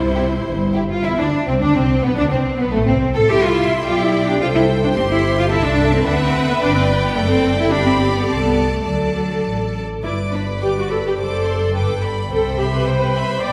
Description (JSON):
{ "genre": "quick classical-period movement for string orchestra", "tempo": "107 BPM", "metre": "2/4", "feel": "rubato", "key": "G major from 5.5 s", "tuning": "A4 = 441 Hz", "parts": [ { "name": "rich studio violin section", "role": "melody", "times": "0.0-13.5 s", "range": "A3 to D6", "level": "-29 LUFS", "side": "equal", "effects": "none" }, { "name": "warm studio viola section", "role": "accompaniment", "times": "0.0-13.5 s", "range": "A3 to D5", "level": "-24 LUFS", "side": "equal", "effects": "none" }, { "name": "rich chamber double bass section", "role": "bass", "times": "0.0-13.5 s", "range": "F#1 to A2", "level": "-24 LUFS", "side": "equal", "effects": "none" }, { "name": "rich studio cello section", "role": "bass", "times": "0.0-13.5 s", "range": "F#2 to A4", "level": "-23 LUFS", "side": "equal", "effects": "none" }, { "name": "clear studio violin section", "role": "second line", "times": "0.2-13.5 s", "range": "A3 to B5", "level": "-26 LUFS", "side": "equal", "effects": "none" } ], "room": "wet scoring stage reverb, RT60 1.9 s", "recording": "heard from further back in the room", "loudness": "-18 LUFS", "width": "mono", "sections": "0.0-1.0 A section; 1.0-10.0 B section; 10.0-13.5 C section", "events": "none", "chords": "0.0 C; 1.0 Cadd9; 1.6 Csus2; 2.2 Am; 3.3 C; 3.9 G7/B; 4.4 C; 5.5 Am/C; 6.1 D7; 6.6 G; 7.2 D7/F#; 7.7 G; 8.3 Am/C; 8.9 D; 10.0 G; 11.2 D7/F#; 11.8 G; 12.3 Cmaj7", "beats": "0.45 | 1.04 1.61 | 2.17 2.73 | 3.30 3.85 | 4.41 4.96 | 5.51 6.06 | 6.61 7.16 | 7.71 8.28 | 8.86 9.45 | 10.04 10.62 | 11.19 11.75 | 12.32 12.88 | 13.43" }